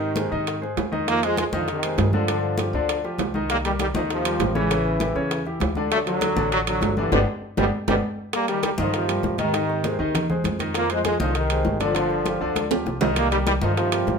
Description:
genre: latin, salsa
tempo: 198 BPM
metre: 4/4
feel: straight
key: C minor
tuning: A4 = 441 Hz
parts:
  - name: bright trombone section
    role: melody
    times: 0.0-14.2 s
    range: B2 to Bb3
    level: -24 LUFS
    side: right 1 dB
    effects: none
  - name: clear concert grand piano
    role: accompaniment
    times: 0.0-14.2 s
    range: Db3 to Eb5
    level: -26 LUFS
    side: left 2 dB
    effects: none
  - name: upright bass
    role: bass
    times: 0.0-14.2 s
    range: G1 to A2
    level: -28 LUFS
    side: equal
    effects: none
  - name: congas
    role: percussion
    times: 0.0-14.2 s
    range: none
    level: -30 LUFS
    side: left 1 dB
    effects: none
  - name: bongos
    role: percussion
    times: 0.2-14.2 s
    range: none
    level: -32 LUFS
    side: left 5 dB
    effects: none
  - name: timbales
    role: percussion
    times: 0.2-14.1 s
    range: none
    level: -29 LUFS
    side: right 7 dB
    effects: none
room: wet studio reverb, RT60 0.8 s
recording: minimal, uncompressed stereo recording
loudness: -20 LUFS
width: side -5 dB against mid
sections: 0.0-8.3 A section; 8.3-14.2 A section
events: drum fill 7.1-8.3, 12.6-13.2; band accent 7.1-8.3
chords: 0.0 Ab6; 1.1 Fm7; 2.3 G5; 3.5 Cm7; 4.7 A7; 5.9 D; 7.1 G; 8.3 Cm7; 9.5 Ab6; 10.7 Fm7; 12.0 G5; 13.2 Cm7

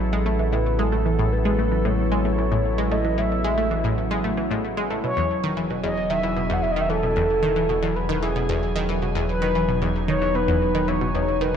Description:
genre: ambient, sequencer-driven space music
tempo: 113 BPM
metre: 4/4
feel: straight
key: E major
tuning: A4 = 439 Hz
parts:
  - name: evolving wavetable pad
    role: sustained chords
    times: 0.0-11.6 s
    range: C#3 to G#5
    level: -26 LUFS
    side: right 1 dB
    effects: chorus, built-in reverb
  - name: round analog bass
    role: bass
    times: 0.0-11.6 s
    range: E1 to A1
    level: -27 LUFS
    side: equal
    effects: none
  - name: analog pluck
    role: riff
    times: 0.1-11.6 s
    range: E2 to A3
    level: -26 LUFS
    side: equal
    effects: chorus, phaser, ping-pong delay
  - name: mellow horn-like synth lead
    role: melody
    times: 0.5-11.6 s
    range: G#4 to F#5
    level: -25 LUFS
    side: equal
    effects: chorus, ping-pong delay
room: moderate concert hall reverb, RT60 2.1 s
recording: dark, warm production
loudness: -20 LUFS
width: side -8 dB against mid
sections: 0.0-11.6 A section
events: none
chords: 0.0 A; 5.0 E

